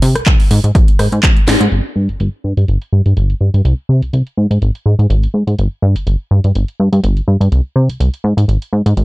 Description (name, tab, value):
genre	filtered disco house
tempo	124 BPM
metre	4/4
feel	swing 54% on 16ths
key	unclear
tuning	A4 = 445 Hz
part	plucky analog bass	bass	0.0-9.0 s	G1 to C3	-12 LUFS	equal	tube saturation, sidechain pumping, low-pass filter
part	house drum kit	drums	0.0-9.0 s	handclaps, hi-hat, rim click, snare drum	-19 LUFS	equal	low-pass filter on hats, studio reverb, low-pass filter on snare
part	electronic kick drum	drums	0.3-1.3 s	none	-11 LUFS	equal	studio reverb
room	little or no reverb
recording	dark, warm production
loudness	-11 LUFS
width	side -20 dB against mid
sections	0.0-1.7 A section; 1.7-9.0 B section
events	filter sweep on analog synth bass 0.0-1.7, 1.7-9.0; drum fill 1.5; band accent 1.5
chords	none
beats	0.26 0.75 1.23 | 1.72 2.20 2.68 3.17 | 3.65 4.13 4.62 5.10 | 5.59 6.07 6.55 7.04 | 7.52 8.01 8.49 8.97